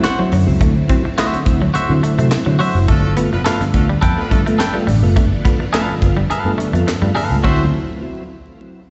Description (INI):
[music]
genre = funk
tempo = 105 BPM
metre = 4/4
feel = straight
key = unclear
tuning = A4 = 440 Hz
[part]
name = twangy electric guitar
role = accompaniment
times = 0.0-7.6 s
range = F#4 to G5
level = -23 LUFS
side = equal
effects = slapback echo
[part]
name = string machine, full ensemble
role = sustained chords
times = 0.0-7.7 s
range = F3 to E4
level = -29 LUFS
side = equal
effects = ensemble chorus
[part]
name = electric guitar at the edge of break-up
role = riff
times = 0.0-7.6 s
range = F#3 to C4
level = -25 LUFS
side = equal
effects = none
[part]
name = tonewheel organ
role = stabs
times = 0.0-7.7 s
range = G2 to F4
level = -24 LUFS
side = equal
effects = chorus vibrato, slow rotary speaker, tape echo
[part]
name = tight funk drum kit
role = drums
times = 0.0-7.6 s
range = crash cymbal, handclaps, hi-hat, kick drum, snare drum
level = -21 LUFS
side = equal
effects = none
[part]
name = vintage muted picked electric bass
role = bass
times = 0.3-7.7 s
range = F1 to D3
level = -18 LUFS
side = equal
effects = none
[part]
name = clear horn section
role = second line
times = 2.9-7.6 s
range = F3 to C5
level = -29 LUFS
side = equal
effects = slapback echo
[sound]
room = light reverb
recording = live gig heard through the venue's PA, recital hall reverb, vinyl crackle, nothing above 8.0 kHz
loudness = -16 LUFS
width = mono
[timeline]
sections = 0.0-7.4 A section; 7.4-8.9 B section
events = none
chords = 0.0 D9; 2.9 G9; 7.4 D9